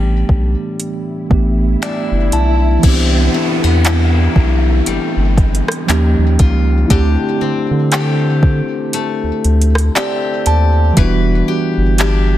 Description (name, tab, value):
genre	contemporary R&B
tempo	59 BPM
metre	4/4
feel	swing 58% on 16ths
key	unclear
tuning	A4 = 440 Hz
part	mellow tine electric piano	accompaniment	0.0-12.4 s	E3 to A5	-18 LUFS	right 3 dB	medium stereo tremolo
part	picked steel-string acoustic guitar	arpeggios	0.0-12.4 s	A2 to B4	-21 LUFS	left 9 dB	digital delay
part	round analog bass	bass	0.0-12.4 s	E1 to D3	-13 LUFS	equal	none
part	swell and downlifter	sound effects	1.5-11.0 s	none	-25 LUFS	equal	none
part	smooth R&B drum kit	drums	0.3-12.3 s	crash cymbal, finger snaps, handclaps, hi-hat, kick drum, rim click	-16 LUFS	equal	overdrive
room	little or no reverb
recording	dense, heavily limited modern master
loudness	-12 LUFS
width	side -13 dB against mid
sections	0.0-2.8 A section; 2.8-12.4 B section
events	swell 1.5-2.8; tine electric piano fill 1.3-2.8, 9.4-11.0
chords	0.0 A7sus4; 2.8 Cmaj7; 5.9 D#9; 6.9 D7sus4; 11.0 Em7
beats	0.80 1.82 | 2.83 3.85 4.87 5.89 | 6.90 7.92 8.94 9.95 | 10.97 11.99